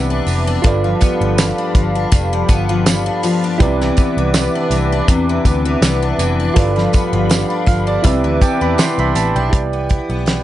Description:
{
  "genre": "indie pop, bedroom pop",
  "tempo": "81 BPM",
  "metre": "4/4",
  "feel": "swing 55% on 16ths",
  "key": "C major",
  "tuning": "A4 = 442 Hz",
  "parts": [
    { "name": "picked steel-string acoustic guitar", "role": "accompaniment", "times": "0.0-10.4 s", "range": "G2 to E4", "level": "-20 LUFS", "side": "left 4 dB", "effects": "analog chorus, warbly pitch drift" },
    { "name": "soft electric-piano-like synth keys", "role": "accompaniment", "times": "0.0-10.4 s", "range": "E4 to D6", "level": "-21 LUFS", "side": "right 5 dB", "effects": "chorus, cassette tape" },
    { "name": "hollow soft pad", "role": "sustained chords", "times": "0.0-9.5 s", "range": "G4 to D6", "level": "-24 LUFS", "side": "left 1 dB", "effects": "chorus" },
    { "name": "vintage muted picked electric bass", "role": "bass", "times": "0.0-10.4 s", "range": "F1 to E2", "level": "-19 LUFS", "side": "equal", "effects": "none" },
    { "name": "damped 70s drum kit", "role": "drums", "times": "0.3-10.4 s", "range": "hi-hat, kick drum, snare drum", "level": "-15 LUFS", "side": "equal", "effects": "none" },
    { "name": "tambourine", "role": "percussion", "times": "0.3-9.4 s", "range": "none", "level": "-30 LUFS", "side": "right 9 dB", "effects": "none" }
  ],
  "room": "light reverb",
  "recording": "nothing above 10.8 kHz",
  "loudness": "-13 LUFS",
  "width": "side -13 dB against mid",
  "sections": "0.0-9.5 A section",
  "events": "synth keys fill 7.3-9.5",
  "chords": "0.0 Cmaj9; 0.6 G7; 3.6 Cmaj9; 6.6 G7; 8.0 Cmaj9"
}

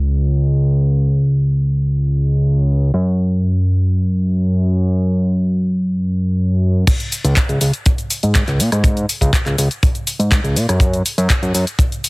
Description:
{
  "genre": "nu-disco, nu disco",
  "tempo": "122 BPM",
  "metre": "4/4",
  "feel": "straight",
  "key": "unclear",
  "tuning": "A4 = 441 Hz",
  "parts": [
    { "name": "fat analog bass", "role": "bass", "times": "0.0-11.7 s", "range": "C#2 to A#2", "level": "-14 LUFS", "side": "equal", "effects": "none" },
    { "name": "house drum kit", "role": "drums", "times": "6.9-12.1 s", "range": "crash cymbal, handclaps, hi-hat, rim click, shaker", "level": "-21 LUFS", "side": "left 1 dB", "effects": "none" },
    { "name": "kick drum", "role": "drums", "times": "6.9-11.9 s", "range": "none", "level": "-16 LUFS", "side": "equal", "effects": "none" }
  ],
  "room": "little or no reverb",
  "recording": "heavily compressed radio sound, multiband compression",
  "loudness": "-14 LUFS",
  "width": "side -27 dB against mid",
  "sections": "0.0-6.9 A section; 6.9-12.1 B section",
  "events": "drop 6.9-12.1",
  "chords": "none"
}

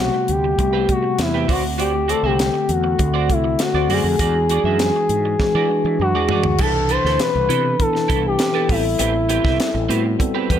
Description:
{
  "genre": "polished 1980s jazz-funk pop",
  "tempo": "100 BPM",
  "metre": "4/4",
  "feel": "straight",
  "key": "A dorian",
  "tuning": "A4 = 440 Hz",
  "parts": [
    { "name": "expressive portamento lead", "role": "melody", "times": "0.0-10.5 s", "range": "E4 to C5", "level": "-20 LUFS", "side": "left 2 dB", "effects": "chorus" },
    { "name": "mellow tine electric piano", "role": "accompaniment", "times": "0.0-10.6 s", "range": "B2 to F#5", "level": "-24 LUFS", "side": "left 2 dB", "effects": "fast stereo tremolo, analog chorus" },
    { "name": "electric guitar at the edge of break-up", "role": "riff", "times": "0.0-10.6 s", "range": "C4 to E5", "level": "-26 LUFS", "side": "right 10 dB", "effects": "analog chorus" },
    { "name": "mellow fretless electric bass", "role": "bass", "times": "0.0-10.6 s", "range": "A1 to E3", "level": "-22 LUFS", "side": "right 1 dB", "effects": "none" },
    { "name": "tight funk drum kit", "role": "drums", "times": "0.3-10.6 s", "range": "crash cymbal, hi-hat, kick drum, snare drum, toms", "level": "-23 LUFS", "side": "right 1 dB", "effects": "gated reverb" }
  ],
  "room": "light reverb",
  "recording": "none",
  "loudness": "-16 LUFS",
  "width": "side -10 dB against mid",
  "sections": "0.0-6.6 A section; 6.6-10.6 B section",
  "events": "drum fill 5.4-6.6",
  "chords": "0.0 Am9; 1.5 D7; 4.2 E9; 6.6 Cmaj13; 8.7 Am9"
}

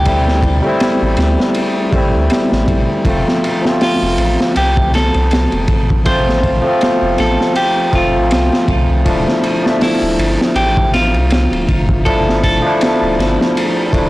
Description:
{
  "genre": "trip hop",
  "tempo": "80 BPM",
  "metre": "4/4",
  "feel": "swing 56% on 16ths",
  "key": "unclear",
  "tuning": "A4 = 440 Hz",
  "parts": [
    { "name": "semi-hollow electric guitar", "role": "melody", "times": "0.0-13.1 s", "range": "E4 to C5", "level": "-19 LUFS", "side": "equal", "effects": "tape echo" },
    { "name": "barky tine electric piano", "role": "accompaniment", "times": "0.0-14.1 s", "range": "F3 to E5", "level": "-16 LUFS", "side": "left 1 dB", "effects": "overdrive, harmonic tremolo, vintage 12-bit sampler grit, tape echo" },
    { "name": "round analog bass", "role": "bass", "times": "0.0-14.1 s", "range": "D1 to D2", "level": "-17 LUFS", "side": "equal", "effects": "tube saturation" },
    { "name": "crunchy breakbeat drum kit", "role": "drums", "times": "0.1-14.1 s", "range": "hi-hat, kick drum, ride cymbal, snare drum", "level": "-16 LUFS", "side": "equal", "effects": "none" }
  ],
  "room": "studio reverb",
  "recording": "blown-out, overdriven recording, vinyl crackle, overdrive",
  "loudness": "-11 LUFS",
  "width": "side -18 dB against mid",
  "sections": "0.0-14.1 A section",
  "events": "none",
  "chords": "0.0 Am7; 3.1 F; 9.1 Dmadd9"
}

